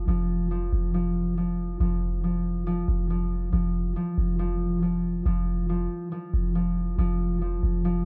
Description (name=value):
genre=hip hop, trap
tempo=139 BPM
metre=4/4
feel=half-time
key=unclear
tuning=A4 = 439 Hz
part: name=concert harp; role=arpeggios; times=0.0-8.1 s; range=F3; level=-30 LUFS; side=equal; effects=analog delay
part: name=clean 808-style bass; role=bass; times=0.0-8.1 s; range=F1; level=-29 LUFS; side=equal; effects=none
room=studio ambience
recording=dry, gritty hardware recording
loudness=-27 LUFS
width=mono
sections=0.0-8.1 A section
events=none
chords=none